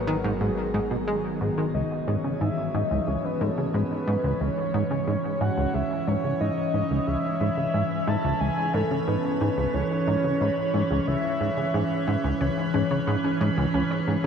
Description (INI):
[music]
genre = ambient, sequencer-driven space music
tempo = 90 BPM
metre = 4/4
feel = straight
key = C# minor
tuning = A4 = 443 Hz
[part]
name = soft octave-layered synth lead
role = melody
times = 0.0-12.1 s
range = G#4 to A5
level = -29 LUFS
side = equal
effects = chorus, phaser, shimmer reverb, tape echo
[part]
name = evolving wavetable pad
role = sustained chords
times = 0.0-14.3 s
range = D#3 to C#5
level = -28 LUFS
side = equal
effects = chorus, built-in reverb, phaser, shimmer reverb
[part]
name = analog drone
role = bass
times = 0.0-1.7 s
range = G#1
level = -40 LUFS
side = equal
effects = chorus
[part]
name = plucky analog bass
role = riff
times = 0.1-14.3 s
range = C#2 to G#3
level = -27 LUFS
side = equal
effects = wide subtle chorus, tape echo
[part]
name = bubbling stepped-filter texture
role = texture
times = 1.7-14.3 s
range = B4 to B5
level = -40 LUFS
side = right 1 dB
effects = chorus, built-in reverb, shimmer reverb
[part]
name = wide unison pluck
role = arpeggios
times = 12.4-14.3 s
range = C#4 to C#5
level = -31 LUFS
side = moving between left 5 dB and right 1 dB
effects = auto-pan, shimmer reverb, tape echo
[sound]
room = wet cathedral reverb, RT60 6.2 s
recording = in a vast, echoing space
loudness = -23 LUFS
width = side -7 dB against mid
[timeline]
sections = 0.0-1.7 A section; 1.7-14.3 B section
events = fade-in on synth texture 1.7-14.3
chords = 0.0 G#m7; 1.7 C#m